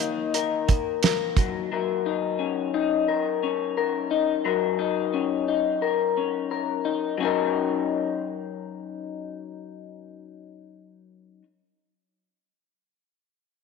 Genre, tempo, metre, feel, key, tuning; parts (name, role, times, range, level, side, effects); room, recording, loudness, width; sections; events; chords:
indie pop, bedroom pop; 88 BPM; 4/4; swing 55% on 16ths; F# major; A4 = 440 Hz
electric guitar through a small old amp; accompaniment; 0.0-11.5 s; D#3 to A#4; -24 LUFS; left 9 dB; analog chorus, warbly pitch drift
damped 70s drum kit; drums; 0.0-1.5 s; hi-hat, kick drum, snare drum; -23 LUFS; right 4 dB
moderate echo chamber reverb, RT60 2.1 s; 1960s-style stereo; -23 LUFS; side -4 dB against mid
0.0-7.2 A section; 7.2-9.9 B section
0.0 D#5; 1.4 F#6